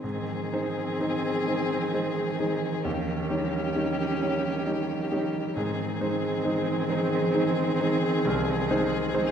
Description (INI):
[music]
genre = classical, slow romantic movement for piano quartet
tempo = 44 BPM (dotted quarters)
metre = 6/8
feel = rubato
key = Ab major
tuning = A4 = 440 Hz
[part]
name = rich violin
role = melody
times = 0.0-9.3 s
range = G4 to Ab4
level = -32 LUFS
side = left 4 dB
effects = none
[part]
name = warm cello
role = second line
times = 0.0-9.3 s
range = Eb3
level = -31 LUFS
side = right 4 dB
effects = none
[part]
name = clear concert grand piano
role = accompaniment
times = 0.0-9.3 s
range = C2 to Db5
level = -28 LUFS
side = equal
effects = none
[part]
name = warm viola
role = accompaniment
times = 0.0-9.3 s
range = C4 to Db4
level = -32 LUFS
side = right 2 dB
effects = none
[sound]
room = wet recital hall reverb, RT60 1.6 s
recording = heard from further back in the room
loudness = -25 LUFS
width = side -8 dB against mid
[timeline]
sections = 0.0-9.3 A section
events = none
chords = 0.0 Ab; 2.9 Eb7; 5.6 Ab; 8.3 Ab/C